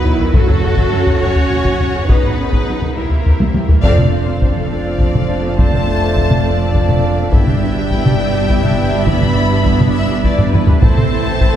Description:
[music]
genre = cinematic, epic orchestral film score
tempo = 69 BPM (dotted quarters)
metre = 6/8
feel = straight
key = unclear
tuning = A4 = 439 Hz
[part]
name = clear studio violin section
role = melody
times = 0.0-11.6 s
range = A4 to B5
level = -24 LUFS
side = left 4 dB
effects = none
[part]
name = clear symphonic violin section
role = second line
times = 0.0-11.6 s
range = A3 to E5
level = -25 LUFS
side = left 3 dB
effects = none
[part]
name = rich symphonic viola section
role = accompaniment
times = 0.0-11.5 s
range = C#3 to A4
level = -24 LUFS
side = equal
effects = none
[part]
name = clear studio string section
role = sustained chords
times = 0.0-11.6 s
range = B3 to F#5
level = -27 LUFS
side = equal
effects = none
[part]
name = warm French horn section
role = sustained chords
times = 0.0-11.6 s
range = E3 to G4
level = -24 LUFS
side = left 2 dB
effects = none
[part]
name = rich symphonic cello section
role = bass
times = 0.0-11.6 s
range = F2 to F#4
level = -22 LUFS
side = right 2 dB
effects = none
[part]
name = taiko ensemble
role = drums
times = 0.1-11.6 s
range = none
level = -15 LUFS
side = equal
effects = none
[part]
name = rich symphonic double bass section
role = bass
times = 0.2-11.6 s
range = F1 to C2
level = -20 LUFS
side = right 3 dB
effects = none
[part]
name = timpani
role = percussion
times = 0.3-1.2, 7.3-8.2 s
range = F#2 to G2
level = -23 LUFS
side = left 1 dB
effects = none
[part]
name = clear trombone section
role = sustained chords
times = 3.8-11.6 s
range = E3 to D4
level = -23 LUFS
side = equal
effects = none
[sound]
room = wet scoring stage reverb, RT60 2.0 s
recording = heard from further back in the room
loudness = -12 LUFS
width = side -10 dB against mid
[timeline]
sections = 0.0-3.8 A section; 3.8-11.6 B section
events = drum fill 3.4-3.8, 10.4-10.8; band accent 3.8-4.4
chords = 0.3 F#m; 2.1 G#m7; 3.0 C7; 3.8 F6; 7.3 Em7/G; 10.8 Am

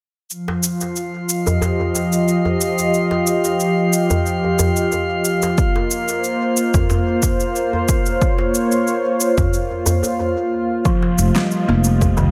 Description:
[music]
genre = organic downtempo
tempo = 91 BPM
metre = 4/4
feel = straight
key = unclear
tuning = A4 = 441 Hz
[part]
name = warm analog pad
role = sustained chords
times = 0.3-12.3 s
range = F3 to Eb5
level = -22 LUFS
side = equal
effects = chorus, tremolo, sidechain pumping
[part]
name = electronic shaker and snare drum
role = drums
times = 0.3-12.3 s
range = none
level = -26 LUFS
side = equal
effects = overdrive, analog delay
[part]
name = drifting glass-harmonics texture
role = texture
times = 0.7-10.2 s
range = F4 to F5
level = -28 LUFS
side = equal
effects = chorus, built-in reverb
[part]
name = djembe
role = percussion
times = 0.5-12.3 s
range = none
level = -25 LUFS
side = equal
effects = analog delay
[part]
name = electronic kick drum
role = drums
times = 5.6-12.1 s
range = none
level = -21 LUFS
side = equal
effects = overdrive
[part]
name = buzzing kalimba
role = arpeggios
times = 10.9-12.3 s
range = Eb3 to Bb3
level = -22 LUFS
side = equal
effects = low-pass filter, dub echo
[part]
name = upright bass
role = bass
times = 11.2-12.3 s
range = F1 to C2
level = -20 LUFS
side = equal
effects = none
[sound]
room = moderate echo chamber reverb, RT60 2.4 s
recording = echo-heavy mix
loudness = -18 LUFS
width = mono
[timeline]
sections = 0.3-10.9 A section; 10.9-12.3 B section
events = none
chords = 0.3 Fsus2; 5.6 Bbmadd9; 10.9 F7sus2

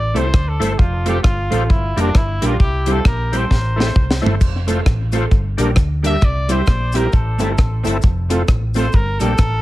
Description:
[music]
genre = ska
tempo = 133 BPM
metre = 4/4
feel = swing 60% on 8ths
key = F major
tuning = A4 = 440 Hz
[part]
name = warm trumpet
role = melody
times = 0.0-9.6 s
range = D4 to E5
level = -24 LUFS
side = equal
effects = tape echo, plate reverb
[part]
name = hollow-body short-scale fingered electric bass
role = bass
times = 0.0-9.6 s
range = F1 to D2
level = -20 LUFS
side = equal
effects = none
[part]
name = electric guitar at the edge of break-up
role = accompaniment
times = 0.1-9.3 s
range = G3 to A4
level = -24 LUFS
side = right 3 dB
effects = tape echo, plate reverb
[part]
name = overdriven tonewheel organ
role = stabs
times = 0.1-9.3 s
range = Bb3 to C5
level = -25 LUFS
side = left 3 dB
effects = chorus vibrato, slow rotary speaker, tape echo, plate reverb
[part]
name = deep reggae drum kit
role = drums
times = 0.2-9.5 s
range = crash cymbal, hi-hat, kick drum, rim click, snare drum, toms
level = -16 LUFS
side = equal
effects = none
[part]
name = cabasa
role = percussion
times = 4.4-9.5 s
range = none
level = -38 LUFS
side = left 7 dB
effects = none
[sound]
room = light reverb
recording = none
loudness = -14 LUFS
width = side -16 dB against mid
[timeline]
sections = 0.0-9.6 A section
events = trumpet solo 0.0-9.6; drum fill 3.5-4.4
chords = 0.0 Am; 0.8 F; 1.7 Gm; 2.6 C; 3.5 Am; 4.4 F; 5.3 Gm; 6.2 C; 7.1 Am; 8.0 F; 8.9 Gm

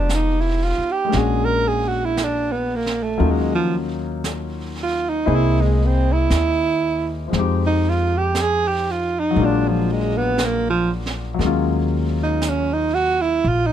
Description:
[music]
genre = jazz ballad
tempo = 59 BPM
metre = 4/4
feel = swing 67% on 8ths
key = Eb minor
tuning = A4 = 438 Hz
[part]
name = breathy tenor saxophone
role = melody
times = 0.0-13.7 s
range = F3 to Bb4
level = -20 LUFS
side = right 4 dB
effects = none
[part]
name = warm grand piano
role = accompaniment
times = 0.0-13.7 s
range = F3 to D#5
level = -24 LUFS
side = left 6 dB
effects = none
[part]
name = upright bass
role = bass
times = 0.0-13.7 s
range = F1 to F2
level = -22 LUFS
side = equal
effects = none
[part]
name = jazz brush drum kit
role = drums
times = 0.1-13.7 s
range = brushed snare drum, hi-hat, snare drum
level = -31 LUFS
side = right 3 dB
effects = none
[sound]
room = little or no reverb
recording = close, detailed microphones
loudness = -18 LUFS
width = side -10 dB against mid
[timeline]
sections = 0.0-13.7 A section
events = tenor saxophone solo 0.0-13.7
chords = 0.0 Fm7b5; 1.1 Bb7alt; 3.2 Ebm9; 5.3 C7alt; 7.3 Fm7; 9.4 Bb7b13; 11.4 Ebm11

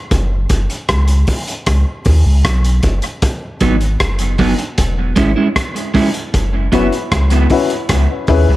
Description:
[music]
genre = dub reggae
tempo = 77 BPM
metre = 4/4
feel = straight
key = unclear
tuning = A4 = 439 Hz
[part]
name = warm sub bass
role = bass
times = 0.1-8.6 s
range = E1 to D#2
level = -14 LUFS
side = equal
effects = none
[part]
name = crunchy breakbeat drum kit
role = drums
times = 0.1-8.5 s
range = hi-hat, kick drum, rim click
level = -18 LUFS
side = equal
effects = none
[part]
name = electric guitar at the edge of break-up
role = accompaniment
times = 3.6-6.9 s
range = F#3 to E4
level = -17 LUFS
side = right 2 dB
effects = high-pass filter, dub echo
[part]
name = dark upright piano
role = stabs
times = 6.7-8.5 s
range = C#4 to B4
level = -16 LUFS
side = left 6 dB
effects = high-pass filter, dub echo
[sound]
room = light reverb, studio reverb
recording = echo-heavy mix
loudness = -12 LUFS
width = side -16 dB against mid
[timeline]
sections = 0.0-8.6 A section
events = break 0.0-6.3; filter sweep 6.3-8.6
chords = 0.1 F#5; 1.7 F#sus4; 3.2 G#m7; 4.8 E6; 6.3 F#7sus4; 7.9 C#m7

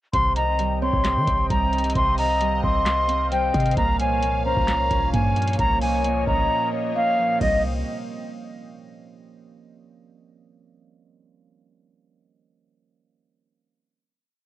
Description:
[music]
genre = hip hop, trap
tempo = 132 BPM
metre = 4/4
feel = half-time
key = C phrygian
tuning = A4 = 439 Hz
[part]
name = reedy silver concert flute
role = melody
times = 0.1-7.6 s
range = Eb5 to C6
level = -22 LUFS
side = equal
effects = cassette tape, analog delay
[part]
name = Celtic harp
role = accompaniment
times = 0.1-7.6 s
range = Bb2 to Eb4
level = -30 LUFS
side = right 7 dB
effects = cassette tape
[part]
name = sweeping resonant pad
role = sustained chords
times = 0.3-7.6 s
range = Bb2 to G5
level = -32 LUFS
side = equal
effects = chorus, cassette tape
[part]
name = warm 808-style bass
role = bass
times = 0.1-7.8 s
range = C2 to Eb3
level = -25 LUFS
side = equal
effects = none
[part]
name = booming analog drum machine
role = drums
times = 0.1-7.6 s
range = crash cymbal, handclaps, hi-hat, kick drum, snare drum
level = -27 LUFS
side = equal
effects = cassette tape
[part]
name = breathy flute-like synth lead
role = second line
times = 0.4-7.6 s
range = C5 to F5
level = -30 LUFS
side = left 8 dB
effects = chorus, cassette tape, analog delay
[sound]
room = little or no reverb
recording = home recording on cassette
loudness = -19 LUFS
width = side -14 dB against mid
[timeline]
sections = 0.1-7.4 hook; 7.4-9.2 final chord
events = drums muted 6.5-7.4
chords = 0.1 Cm; 3.8 Bbm/C; 7.4 Cm

